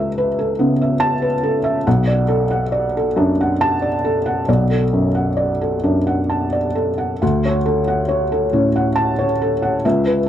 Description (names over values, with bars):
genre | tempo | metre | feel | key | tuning
neoclassical minimalist piano | 68 BPM | 3/4 | uneven beats, rubato | B minor | A4 = 441 Hz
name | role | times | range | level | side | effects
felt-muted upright piano | solo | 0.0-10.3 s | B1 to A5 | -15 LUFS | equal | none
room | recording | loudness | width
light reverb | dry, close 1970s-style studio recording | -15 LUFS | side -10 dB against mid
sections
0.0-10.3 A section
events
none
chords
0.0 Aadd9/C#; 1.9 Bm7; 7.2 Dmaj7